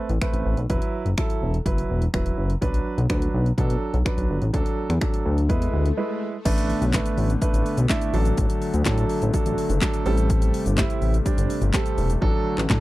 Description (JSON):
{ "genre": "dance-pop", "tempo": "125 BPM", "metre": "4/4", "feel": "straight", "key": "unclear", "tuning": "A4 = 440 Hz", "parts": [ { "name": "warm grand piano", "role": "accompaniment", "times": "0.0-12.8 s", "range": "F#3 to B4", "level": "-27 LUFS", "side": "right 4 dB", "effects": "sidechain pumping" }, { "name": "chorused synth bass", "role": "bass", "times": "0.1-12.8 s", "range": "E1 to B2", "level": "-22 LUFS", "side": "left 1 dB", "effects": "sidechain pumping" }, { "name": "house drum kit", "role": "drums", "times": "0.1-12.8 s", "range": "crash cymbal, finger snaps, handclaps, hi-hat, kick drum, shaker, snare drum", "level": "-25 LUFS", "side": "left 1 dB", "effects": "none" }, { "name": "swell", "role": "sound effects", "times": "4.8-6.5 s", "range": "none", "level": "-36 LUFS", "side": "left 8 dB", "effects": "none" }, { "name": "pipe organ, foundations", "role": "sustained chords", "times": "6.5-12.8 s", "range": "C3 to B3", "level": "-30 LUFS", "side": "left 5 dB", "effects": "sidechain pumping" } ], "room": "little or no reverb", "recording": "dry, close 1970s-style studio recording", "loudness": "-20 LUFS", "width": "side -17 dB against mid", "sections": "0.0-6.5 A section; 6.5-12.8 B section", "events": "swell 4.8-6.5; break 6.0-6.5; hi-hats muted 12.2-12.8", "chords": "0.0 Amadd9; 0.7 Esus2; 2.6 Bm; 4.5 D; 5.5 E; 6.5 Bm7/A; 8.1 D/A; 10.1 Am7; 12.2 D/A" }